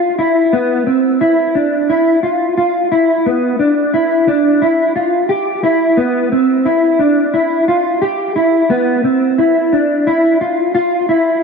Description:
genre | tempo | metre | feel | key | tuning
dream pop | 88 BPM | 4/4 | straight | C major | A4 = 440 Hz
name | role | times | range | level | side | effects
mellow electric guitar | solo | 0.0-11.4 s | B3 to G4 | -11 LUFS | equal | ensemble chorus, ping-pong delay
room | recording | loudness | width
wet plate reverb, RT60 3.2 s | dark, warm production | -11 LUFS | side -5 dB against mid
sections
0.0-11.4 A section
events
none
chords
none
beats
0.52 1.21 1.89 | 2.57 3.25 3.93 4.62 | 5.30 5.98 6.66 7.34 | 8.02 8.71 9.39 10.07 | 10.75

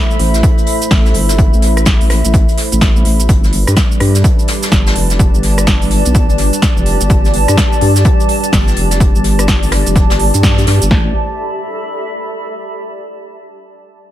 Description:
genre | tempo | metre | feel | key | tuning
bass house | 126 BPM | 4/4 | swing 61% on 16ths | A minor | A4 = 439 Hz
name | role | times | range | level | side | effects
dark analog pad | sustained chords | 0.0-11.1 s | G3 to E5 | -22 LUFS | equal | chorus, sidechain pumping
granular cloud pad | texture | 0.0-12.8 s | G4 to B5 | -20 LUFS | equal | built-in reverb, sidechain pumping
big-room dance drum kit | drums | 0.1-10.9 s | cabasa, hi-hat, rim click, snare drum | -18 LUFS | right 1 dB | overdrive
vowel-sweep wobble bass | bass | 0.2-11.1 s | F1 to G2 | -13 LUFS | equal | chorus, overdrive, sidechain pumping
vintage brush drum kit | drums | 0.2-10.8 s | hi-hat, snare drum | -25 LUFS | left 2 dB | sidechain pumping on hats, high-pass filter on hats, high-pass filter on snare, high-pass filter on room
big-room dance drum kit | drums | 0.4-11.0 s | kick drum, snare drum | -12 LUFS | equal | overdrive
room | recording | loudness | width
little or no reverb | none | -9 LUFS | side -13 dB against mid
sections
0.0-10.9 A section; 10.9-12.8 B section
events
drop 0.0-10.9; band accent 10.4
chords
0.0 Am; 3.3 G; 10.9 Am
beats
0.43 0.91 | 1.39 1.86 2.34 2.81 | 3.29 3.77 4.24 4.72 | 5.20 5.67 6.15 6.62 | 7.10 7.58 8.05 8.53 | 9.00 9.48 9.96 10.43 | 10.91 11.38 11.86 12.34

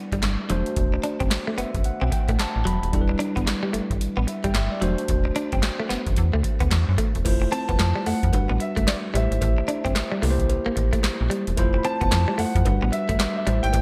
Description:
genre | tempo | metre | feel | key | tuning
R&B, new jack swing | 111 BPM | 4/4 | swing 62% on 16ths | unclear | A4 = 440 Hz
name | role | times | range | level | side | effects
tine electric piano | accompaniment | 0.0-13.8 s | G3 to B5 | -31 LUFS | equal | tube saturation
direct-recorded clean electric guitar | riff | 0.1-13.6 s | F#3 to D4 | -32 LUFS | equal | lush chorus
slap-like FM bass | bass | 0.1-13.8 s | D#1 to F#2 | -26 LUFS | equal | none
booming analog drum machine | drums | 0.1-13.8 s | crash cymbal, handclaps, hi-hat, kick drum, snare drum | -27 LUFS | equal | gated reverb
cowbell | percussion | 7.2-13.8 s | none | -42 LUFS | equal | none
warm concert grand piano | melody | 7.5-13.8 s | D5 to B5 | -31 LUFS | equal | subtle chorus
room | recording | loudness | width
moderate plate reverb, RT60 2.2 s | bright 1980s-style digital production | -23 LUFS | mono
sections
0.0-7.3 A section; 7.3-13.8 B section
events
tine electric piano fill 1.3-2.9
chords
0.5 D7/E; 2.9 Em7; 4.8 D7/E; 7.3 Fmaj7; 8.3 Gmaj7; 9.1 Am7; 10.2 C7; 11.6 Fmaj7; 12.7 Gmaj7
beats
0.23 | 0.77 1.31 1.85 2.39 | 2.93 3.47 4.01 4.55 | 5.09 5.63 6.17 6.71 | 7.25 7.79 8.33 8.87 | 9.41 9.96 10.49 11.04 | 11.58 12.12 12.66 13.20 | 13.74

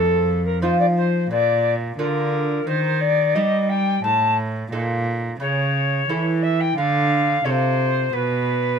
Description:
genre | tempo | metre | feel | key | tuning
classical, baroque-style sonata movement with continuo | 88 BPM | 4/4 | straight | unclear | A4 = 440 Hz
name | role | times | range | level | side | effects
mellow alto recorder | melody | 0.0-8.8 s | A4 to A5 | -21 LUFS | left 2 dB | none
lute | accompaniment | 0.0-8.8 s | F2 to A4 | -27 LUFS | right 3 dB | none
rich cello | bass | 0.0-8.8 s | F2 to G3 | -22 LUFS | right 1 dB | none
room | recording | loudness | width
light reverb | none | -18 LUFS | side -6 dB against mid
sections
0.0-8.8 A section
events
none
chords
0.0 F7; 1.3 Bb; 2.7 Eb; 4.0 Eb5; 5.4 A/C#; 6.8 Dm; 8.1 N.C.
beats
0.63 1.31 1.99 | 2.67 3.35 4.04 4.72 | 5.40 6.08 6.77 7.45 | 8.13

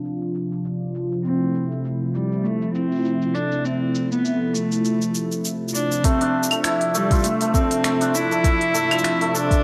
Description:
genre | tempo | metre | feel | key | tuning
folktronica | 100 BPM | 4/4 | swing 56% on 16ths | unclear | A4 = 440 Hz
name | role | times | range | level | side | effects
warm analog pad | sustained chords | 0.0-9.6 s | C3 to E5 | -28 LUFS | equal | chorus
organic electronic drum kit | drums | 0.0-9.6 s | claves, finger snaps, hi-hat, shaker | -29 LUFS | equal | none
dark cello | melody | 1.2-9.6 s | G3 to E4 | -25 LUFS | equal | none
hammered dulcimer | arpeggios | 6.0-9.6 s | A3 to A4 | -25 LUFS | equal | none
electronic kick drum | drums | 6.0-9.6 s | none | -21 LUFS | equal | none
room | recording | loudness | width
light reverb | low-pass filter | -22 LUFS | mono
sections
0.0-6.0 A section; 6.0-9.6 B section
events
filter sweep on drum 0.0-6.0; filter sweep on analog synth pad 0.0-6.0; filter sweep 0.0-6.0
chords
0.0 Dm7; 1.2 Fmaj7; 6.0 Dm9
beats
0.04 0.64 | 1.24 1.84 2.44 3.04 | 3.64 4.24 4.84 5.44 | 6.04 6.64 7.24 7.84 | 8.44 9.04

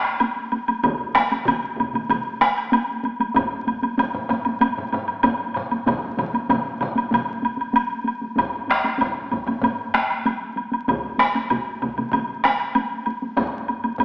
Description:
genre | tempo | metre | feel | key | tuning
japanese traditional, taiko drum ensemble | 96 BPM | 4/4 | straight | none | none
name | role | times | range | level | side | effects
woodblock | percussion | 0.0-14.0 s | none | -23 LUFS | equal | none
taiko ensemble | percussion | 0.2-14.0 s | none | -25 LUFS | equal | none
taiko ensemble | percussion | 0.8-12.6 s | none | -23 LUFS | equal | none
taiko ensemble | percussion | 0.8-14.0 s | none | -33 LUFS | equal | none
taiko ensemble | percussion | 3.4-14.0 s | none | -26 LUFS | equal | none
room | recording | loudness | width
wet recital hall reverb, RT60 1.6 s | recorded in a church or concert hall, vinyl crackle, small speaker sound | -20 LUFS | side -26 dB against mid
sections
0.0-14.0 A section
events
none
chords
none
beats
0.21 | 0.84 1.47 2.10 2.72 | 3.35 3.98 4.61 5.24 | 5.87 6.49 7.12 7.75 | 8.37 9.00 9.62 10.25 | 10.88 11.50 12.12 12.75 | 13.37 13.99

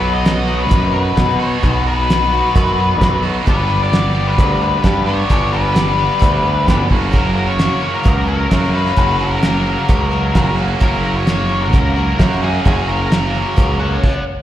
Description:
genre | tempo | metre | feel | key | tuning
classic rock | 131 BPM | 4/4 | straight | unclear | A4 = 439 Hz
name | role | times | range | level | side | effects
octave-fuzz lead guitar | melody | 0.0-14.2 s | G#4 to F#5 | -20 LUFS | left 4 dB | distortion, slapback echo, plate reverb
picked twelve-string acoustic guitar | accompaniment | 0.0-14.0 s | F#2 to G4 | -27 LUFS | right 2 dB | plate reverb, slapback echo
overdriven electric guitar | riff | 0.0-14.0 s | F#2 to G4 | -22 LUFS | right 9 dB | slapback echo
overdriven semi-hollow guitar | riff | 0.0-14.0 s | F#2 to G4 | -24 LUFS | left 9 dB | slapback echo
overdriven picked electric bass | bass | 0.0-14.0 s | F#1 to B2 | -18 LUFS | equal | none
cloth-damped thuddy drum kit | drums | 0.3-14.1 s | crash cymbal, hi-hat, kick drum, snare drum | -15 LUFS | equal | none
lead guitar through a small cranked amp | second line | 13.8-14.2 s | C#5 | -26 LUFS | left 1 dB | overdrive, plate reverb, slapback echo
room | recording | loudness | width
light reverb | live gig heard through the venue's PA, recital hall reverb | -13 LUFS | side -12 dB against mid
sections
0.0-14.4 A section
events
none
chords
0.0 B; 3.5 G; 6.9 F#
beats
0.26 0.71 1.17 | 1.63 2.09 2.55 3.00 | 3.46 3.92 4.38 4.84 | 5.30 5.75 6.21 6.67 | 7.13 7.59 8.05 8.51 | 8.97 9.43 9.89 10.35 | 10.81 11.27 11.73 12.19 | 12.65 13.11 13.57 14.03

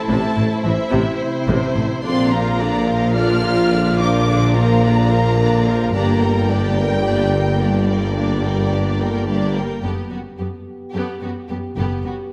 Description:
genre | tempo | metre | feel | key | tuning
cinematic | 216 BPM (eighths) | 7/8 | straight | unclear | A4 = 438 Hz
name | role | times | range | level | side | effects
warm symphonic violin section | melody | 0.0-12.1 s | G4 to F6 | -29 LUFS | equal | none
warm symphonic violin section | second line | 0.0-12.1 s | E4 to G5 | -29 LUFS | equal | none
rich studio viola section | accompaniment | 0.0-12.1 s | C3 to F4 | -28 LUFS | equal | none
mellow French horn section | sustained chords | 0.0-12.3 s | C3 to G4 | -25 LUFS | equal | none
rich symphonic cello section | bass | 0.1-12.1 s | F#2 to Bb2 | -26 LUFS | equal | none
warm symphonic double bass section | bass | 0.1-12.0 s | F#1 to Bb1 | -26 LUFS | equal | none
warm tuba | bass | 0.1-9.6 s | G1 to Bb1 | -25 LUFS | equal | none
room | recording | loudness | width
moderate scoring stage reverb, RT60 1.6 s | none | -18 LUFS | mono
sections
0.0-9.8 A section; 9.8-12.3 B section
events
none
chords
0.0 Am; 2.0 Bb; 5.9 Gm; 9.8 Gadd9/F#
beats
| 0.09 0.37 0.65 0.92 1.20 1.48 1.76 | 2.04 2.32 2.60 2.87 3.15 3.43 3.71 | 3.99 4.27 4.55 4.82 5.10 5.38 5.66 | 5.94 6.22 6.49 6.77 7.05 7.33 7.61 | 7.88 8.16 8.44 8.72 9.00 9.28 9.55 | 9.83 10.11 10.39 10.67 10.95 11.22 11.50 | 11.78 12.06

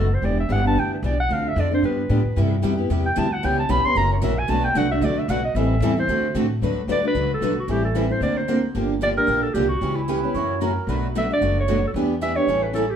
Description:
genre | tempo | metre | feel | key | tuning
acoustic string swing (jazz manouche) | 226 BPM | 4/4 | swing 56% on 8ths | D major from 6.6 s | A4 = 441 Hz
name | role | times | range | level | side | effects
clear clarinet | melody | 0.0-13.0 s | E4 to C6 | -24 LUFS | right 1 dB | plate reverb
picked steel-string acoustic guitar | accompaniment | 0.0-12.8 s | B2 to C5 | -24 LUFS | left 2 dB | none
upright bass | bass | 0.0-12.9 s | E1 to A2 | -24 LUFS | equal | none
picked steel-string acoustic guitar | accompaniment | 2.4-12.9 s | B2 to C5 | -28 LUFS | right 5 dB | none
mellow accordion | second line | 10.2-11.1 s | A#4 to C#5 | -28 LUFS | right 4 dB | none
room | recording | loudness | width
wet studio reverb, RT60 0.8 s | heard from further back in the room | -19 LUFS | side -8 dB against mid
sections
0.0-6.6 A section; 6.6-13.0 B section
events
clarinet solo 0.0-6.6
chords
0.2 Em7; 1.3 Dm7; 1.8 G7; 2.4 Cmaj7; 3.4 C#m7b5; 4.0 F#7; 4.5 Bm7; 5.6 Am7; 6.1 D7; 6.6 D6; 7.7 Am7; 8.2 Daug7; 8.7 Gm7; 9.8 C#m7b5; 10.3 F#7; 10.9 Bm9; 11.9 Em7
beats
| 0.23 0.50 0.77 1.03 | 1.30 1.56 1.83 2.10 | 2.36 2.63 2.89 3.16 | 3.43 3.69 3.96 4.22 | 4.49 4.75 5.02 5.29 | 5.55 5.82 6.08 6.35 | 6.62 6.88 7.15 7.42 | 7.68 7.95 8.21 8.48 | 8.75 9.01 9.28 9.54 | 9.81 10.08 10.34 10.61 | 10.88 11.14 11.41 11.67 | 11.94 12.21 12.47 12.74

